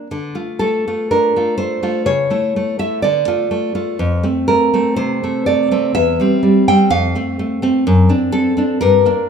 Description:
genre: romantic piece for solo classical guitar.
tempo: 62 BPM.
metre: 2/4.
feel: rubato.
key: D minor.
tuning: A4 = 440 Hz.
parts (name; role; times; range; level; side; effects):
nylon-string guitar; solo; 0.0-9.3 s; E2 to G5; -14 LUFS; equal; none.
room: moderate recital hall reverb, RT60 1.6 s.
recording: minimal, uncompressed stereo recording.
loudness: -13 LUFS.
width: side -6 dB against mid.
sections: 0.1-9.3 A section.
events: none.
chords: 0.1 Dm; 2.1 A/C#; 3.0 Dm; 4.0 F (rootless); 6.0 C/E; 6.9 F; 7.9 D7/F#.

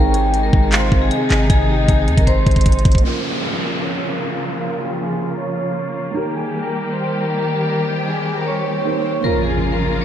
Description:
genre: hip hop, trap.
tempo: 155 BPM.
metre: 4/4.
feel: half-time.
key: Bb dorian.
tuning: A4 = 439 Hz.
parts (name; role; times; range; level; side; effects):
vibraphone with hard mallets; melody; 0.0-10.0 s; G4 to Db6; -24 LUFS; equal; low-pass filter, diffuse ambient delay.
soft octave-layered synth lead; second line; 0.0-2.6 s; C5 to G5; -25 LUFS; left 5 dB; chorus, tremolo, diffuse ambient delay.
felt-muted upright piano; accompaniment; 0.0-10.0 s; Eb3 to Bb4; -28 LUFS; right 5 dB; wide subtle chorus, low-pass filter.
warm symphonic string section; sustained chords; 0.0-10.0 s; C3 to G4; -22 LUFS; equal; low-pass filter.
warm 808-style bass; bass; 0.0-3.0 s; Ab1 to Eb2; -18 LUFS; equal; none.
trap drum kit; drums; 0.1-3.0 s; handclaps, hi-hat, kick drum; -15 LUFS; equal; vintage 12-bit sampler grit.
downlifter, swell and impact; sound effects; 3.0-10.0 s; none; -26 LUFS; equal; none.
room: moderate lush hall reverb, RT60 1.5 s, small room ambience.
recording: dreamy mix soaked in reverb.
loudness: -16 LUFS.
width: side -10 dB against mid.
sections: 0.0-3.0 A section; 3.0-9.2 B section.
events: drum fill 2.3-3.0; filter sweep 3.0-9.2; swell 7.9-9.2; impact 9.2-10.0.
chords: 0.0 Ab; 3.0 Bbm; 6.1 Eb; 9.2 Bbm.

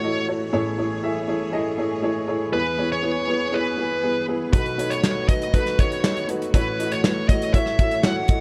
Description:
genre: piano-driven pop.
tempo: 120 BPM.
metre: 4/4.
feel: straight.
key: E major.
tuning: A4 = 442 Hz.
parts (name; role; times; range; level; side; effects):
smooth overdriven lead guitar; melody; 0.0-8.4 s; B4 to F#5; -28 LUFS; equal; none.
warm upright piano; accompaniment; 0.0-8.4 s; A1 to E5; -27 LUFS; equal; none.
rich studio string section; sustained chords; 0.0-8.4 s; A2 to C#5; -35 LUFS; equal; none.
natural country drum kit; drums; 4.5-8.4 s; handclaps, hi-hat, kick drum, snare drum; -22 LUFS; equal; none.
room: light reverb, small room ambience.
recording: dark, warm production.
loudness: -22 LUFS.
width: mono.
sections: 0.0-8.4 A section.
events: none.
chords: 0.0 F#m7/A; 0.5 Amaj7; 2.5 E; 4.5 B7; 6.5 F#m7/A.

